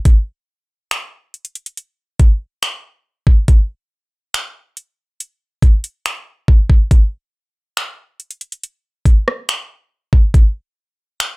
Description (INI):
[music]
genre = R&B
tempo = 70 BPM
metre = 4/4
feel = straight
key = none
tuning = none
[part]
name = smooth R&B drum kit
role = drums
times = 0.1-11.4 s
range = finger snaps, hi-hat, kick drum, rim click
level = -12 LUFS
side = equal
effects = none
[sound]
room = little or no reverb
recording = dry, gritty hardware recording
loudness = -14 LUFS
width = side -28 dB against mid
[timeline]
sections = 0.0-6.9 A section; 6.9-11.4 B section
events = none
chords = none